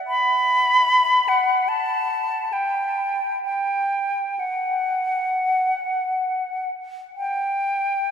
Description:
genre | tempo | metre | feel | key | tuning
classical, free, expressive piece for unaccompanied flute | free time | none | none | unclear | A4 = 444 Hz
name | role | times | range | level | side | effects
silver concert flute | solo | 0.1-8.1 s | F#5 to B5 | -19 LUFS | equal | none
room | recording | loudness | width
wet cathedral reverb, RT60 6.6 s | minimal, uncompressed stereo recording | -19 LUFS | side -8 dB against mid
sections
0.0-8.1 A section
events
none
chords
none

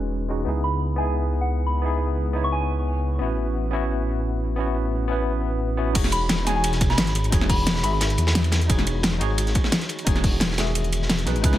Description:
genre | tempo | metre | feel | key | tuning
liquid drum and bass | 175 BPM | 4/4 | straight | unclear | A4 = 440 Hz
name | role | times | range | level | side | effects
barky tine electric piano | accompaniment | 0.0-11.6 s | D#3 to E5 | -28 LUFS | equal | overdrive, fast stereo tremolo, dub echo
dark detuned saw bass | bass | 0.0-11.6 s | E1 to E2 | -24 LUFS | equal | none
soft synth bell | melody | 0.6-2.7, 6.1-8.0 s | F#5 to C#6 | -29 LUFS | equal | chorus, phaser, dub echo
crunchy breakbeat drum kit | drums | 5.9-11.5 s | hi-hat, ride cymbal, snare drum | -29 LUFS | equal | high-pass filter on cymbals, high-pass filter on hats, high-pass filter on snare, high-pass filter on room
electronic kick drum | drums | 6.0-11.5 s | none | -22 LUFS | equal | overdrive
pop drum kit | drums | 6.0-11.6 s | crash cymbal, hi-hat, snare drum | -25 LUFS | equal | overdrive
room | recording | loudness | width
small room ambience | low-pass filter | -20 LUFS | side -13 dB against mid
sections
0.0-6.0 A section; 6.0-11.6 B section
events
filter sweep 0.0-6.0; drop 6.0-11.6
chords
0.5 C#m9; 3.2 A6; 6.0 Emaj13

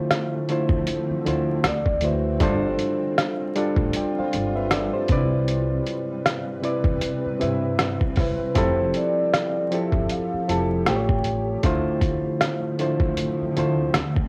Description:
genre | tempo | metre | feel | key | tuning
lo-fi hip hop | 78 BPM | 4/4 | swing 58% on 16ths | D dorian | A4 = 445 Hz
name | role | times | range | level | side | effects
reed electric piano | accompaniment | 0.0-14.0 s | A2 to G5 | -26 LUFS | equal | cassette tape
granular cloud pad | sustained chords | 0.0-14.3 s | C3 to B4 | -35 LUFS | equal | built-in reverb, cassette tape
trip hop sampler-style drum kit | drums | 0.1-14.3 s | hi-hat, kick drum, rim click | -26 LUFS | equal | vintage 12-bit sampler grit
upright bass | bass | 0.7-14.3 s | F1 to G2 | -31 LUFS | equal | none
vibraphone with soft mallets | melody | 1.7-2.4, 8.6-11.4 s | C5 to A5 | -29 LUFS | equal | none
room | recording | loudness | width
moderate booth ambience, RT60 0.3 s | home recording on cassette, vinyl crackle | -23 LUFS | mono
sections
0.0-14.3 A section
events
none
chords
0.0 Dm7; 1.6 D13; 2.4 G7sus4; 5.1 Cmaj7; 8.6 Fmaj9; 10.9 A7b13; 11.6 Dm7

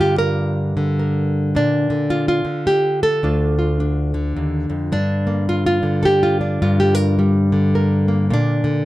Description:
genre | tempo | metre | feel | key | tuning
folk, solo fingerstyle acoustic guitar | 107 BPM | 3/4 | swing 60% on 8ths | G minor | A4 = 440 Hz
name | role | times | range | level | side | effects
nylon-string guitar | solo | 0.0-8.8 s | D2 to Bb4 | -16 LUFS | equal | none
room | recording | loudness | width
light reverb | dark, warm production | -16 LUFS | side -16 dB against mid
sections
0.0-8.8 A section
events
none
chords
0.0 Gm7; 1.6 Bb; 3.2 Dm; 4.9 Gm7; 8.3 Bb

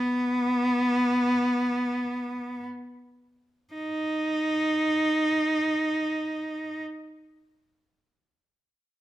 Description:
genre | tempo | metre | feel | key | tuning
pop | free time | none | none | B major | A4 = 440 Hz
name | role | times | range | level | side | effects
rich cello | melody | 0.0-6.8 s | B3 to D#4 | -24 LUFS | equal | none
room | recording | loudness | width
wet large studio reverb, RT60 1.1 s | band playing live in one room | -24 LUFS | side -14 dB against mid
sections
0.0-3.7 A section; 3.7-8.0 B section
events
slowing down 0.0-3.7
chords
none

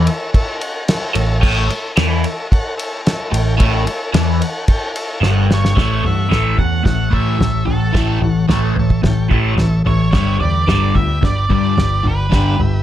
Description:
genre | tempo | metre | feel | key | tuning
garage rock duo or trio | 110 BPM | 4/4 | straight | A mixolydian | A4 = 439 Hz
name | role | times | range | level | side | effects
combo organ | sustained chords | 0.0-12.8 s | G4 to G5 | -28 LUFS | left 1 dB | none
crunchy overdriven guitar | riff | 0.0-12.8 s | G2 to A3 | -19 LUFS | left 2 dB | phaser
overdriven picked electric bass | bass | 0.0-12.8 s | G1 to A2 | -17 LUFS | equal | none
cloth-damped thuddy drum kit | drums | 0.1-12.7 s | crash cymbal, kick drum, ride cymbal, snare drum, toms | -17 LUFS | equal | none
octave-fuzz lead guitar | melody | 5.5-12.6 s | A4 to F#5 | -22 LUFS | right 2 dB | distortion
room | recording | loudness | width
little or no reverb | none | -13 LUFS | side -12 dB against mid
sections
0.0-5.8 A section; 5.8-12.8 B section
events
drum fill 5.2-5.8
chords
0.0 A; 10.1 G

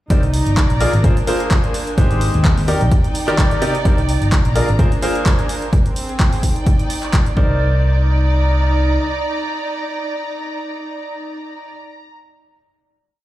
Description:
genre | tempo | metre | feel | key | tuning
piano house | 128 BPM | 4/4 | swing 55% on 16ths | C minor | A4 = 440 Hz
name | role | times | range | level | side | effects
bright concert grand piano | riff | 0.1-11.7 s | C3 to D5 | -22 LUFS | left 1 dB | sidechain pumping, tape echo
fingered electric bass | bass | 0.1-9.0 s | G1 to Eb2 | -16 LUFS | equal | sidechain pumping
electronic kick drum | drums | 0.1-7.5 s | none | -16 LUFS | equal | none
punchy analog drum machine | drums | 0.1-7.3 s | handclaps, hi-hat | -26 LUFS | equal | none
muted studio string section | texture | 0.1-12.1 s | Ab3 to Bb5 | -24 LUFS | right 1 dB | sidechain pumping
room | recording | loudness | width
little or no reverb | played on a big sound system in a bare room, large studio reverb | -14 LUFS | side -15 dB against mid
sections
0.1-7.6 drop; 7.6-11.4 final note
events
drop 0.1-7.6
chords
0.1 Cm9; 0.8 Bb7; 2.0 Abmaj7; 2.7 Ebmaj7; 3.9 Cm9; 4.6 Bb7; 5.7 Abmaj7; 6.4 Ebmaj7; 7.4 Cm9

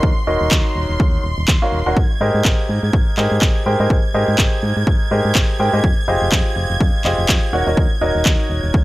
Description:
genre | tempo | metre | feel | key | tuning
piano house | 124 BPM | 4/4 | swing 57% on 16ths | Ab major | A4 = 440 Hz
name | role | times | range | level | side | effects
clear studio violin section | sustained chords | 0.0-8.8 s | C6 to Ab6 | -27 LUFS | right 2 dB | sidechain pumping
clear grand piano | riff | 0.0-8.8 s | Eb4 to G5 | -20 LUFS | equal | sidechain pumping, low-pass filter, analog delay
solid FM bass | bass | 0.0-8.8 s | Eb1 to Ab2 | -20 LUFS | equal | sidechain pumping
electronic kick drum | drums | 0.0-8.8 s | none | -16 LUFS | equal | none
electronic handclaps | drums | 0.5-8.4 s | none | -21 LUFS | equal | overdrive
room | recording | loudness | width
studio reverb | dry, gritty hardware recording | -14 LUFS | side -18 dB against mid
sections
0.0-8.8 A section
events
none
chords
0.0 Ebm7; 2.0 Abmaj9; 5.8 Fm9; 7.5 Ebm7

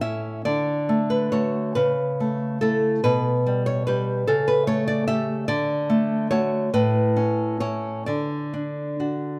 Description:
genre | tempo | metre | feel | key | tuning
classical | 47 BPM (dotted quarters) | 6/8 | uneven beats, rubato | D major | A4 = 440 Hz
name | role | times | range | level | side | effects
nylon-string guitar | accompaniment | 0.0-9.4 s | A2 to E5 | -23 LUFS | equal | none
room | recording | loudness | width
moderate recital hall reverb, RT60 1.7 s | none | -23 LUFS | mono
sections
0.0-9.4 A section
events
none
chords
0.4 D; 1.8 A/C#; 3.0 G/B; 4.3 A7/C#; 5.5 D; 6.7 A; 8.1 D

